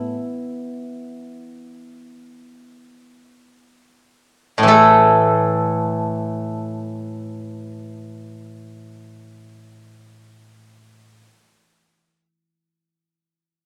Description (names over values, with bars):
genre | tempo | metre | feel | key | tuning
chinese traditional, Chinese solo plucked strings | free time | none | none | unclear | A4 = 440 Hz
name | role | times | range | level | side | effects
steel-string zither | solo | 0.0-11.3 s | A2 to A4 | -19 LUFS | equal | none
room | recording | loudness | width
moderate large studio reverb, RT60 1.0 s | none | -17 LUFS | mono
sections
0.0-4.7 A section; 4.7-10.8 B section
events
slowing down 0.0-4.7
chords
none